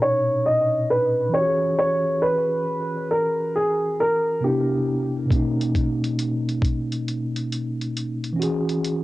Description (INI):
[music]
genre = lo-fi hip hop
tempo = 68 BPM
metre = 4/4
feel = swing 64% on 16ths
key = B major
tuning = A4 = 437 Hz
[part]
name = dark upright piano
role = melody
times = 0.0-5.1 s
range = G4 to D#5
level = -21 LUFS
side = equal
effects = low-pass filter, cassette tape, tape echo
[part]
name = mellow tine electric piano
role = accompaniment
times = 0.0-9.0 s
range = A#2 to G#4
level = -24 LUFS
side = equal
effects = medium stereo tremolo, low-pass filter
[part]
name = dusty soul sampler-style drum kit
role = drums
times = 5.3-9.0 s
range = hi-hat, kick drum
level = -25 LUFS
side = equal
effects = cassette tape
[sound]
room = moderate booth ambience, RT60 0.2 s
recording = home recording on cassette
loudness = -20 LUFS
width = side -17 dB against mid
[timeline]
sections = 0.0-9.0 A section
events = filter sweep 0.0-9.0; kick muted 8.8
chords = 0.0 Bmaj9; 1.3 E69; 4.4 Cmaj9; 5.3 Bmaj9; 8.4 E69